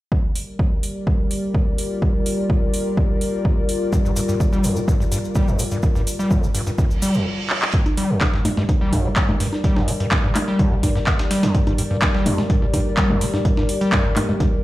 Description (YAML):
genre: acid house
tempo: 126 BPM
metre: 4/4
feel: straight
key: G minor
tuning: A4 = 439 Hz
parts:
  - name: dark analog pad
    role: sustained chords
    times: 0.4-14.6 s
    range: G3 to D5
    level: -26 LUFS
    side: left 1 dB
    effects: chorus, sidechain pumping
  - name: electronic kick drum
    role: drums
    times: 0.1-14.5 s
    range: none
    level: -19 LUFS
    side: equal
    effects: none
  - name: ethereal airy pad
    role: texture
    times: 1.2-7.3 s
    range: G3 to D5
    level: -31 LUFS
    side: left 2 dB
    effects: ensemble chorus, built-in reverb, sidechain pumping
  - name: booming analog drum machine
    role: drums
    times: 0.4-14.5 s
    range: congas, handclaps, hi-hat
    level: -24 LUFS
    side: equal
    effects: none
  - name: overdriven acid bass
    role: riff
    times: 3.9-14.5 s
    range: F2 to G3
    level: -23 LUFS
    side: equal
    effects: distortion, analog chorus, tape echo
  - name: tube shaker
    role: percussion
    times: 3.9-7.2 s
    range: none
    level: -35 LUFS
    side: left 3 dB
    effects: none
  - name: reverse cymbal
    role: sound effects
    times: 6.9-7.7 s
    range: none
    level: -29 LUFS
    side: right 4 dB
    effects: none
  - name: dusty soul sampler-style drum kit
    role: drums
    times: 7.7-14.5 s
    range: hi-hat, snare drum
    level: -34 LUFS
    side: equal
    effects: sidechain pumping on hats, high-pass filter on hats, high-pass filter on snare
room: light reverb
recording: played on a big sound system in a bare room, large studio reverb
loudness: -17 LUFS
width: side -16 dB against mid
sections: 0.1-7.7 A section; 7.7-14.6 B section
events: fade-in on ambient pad 0.1-7.7; reverse cymbal 6.9-7.7; stop 7.3-7.7; drum fill 7.5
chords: 0.1 Gm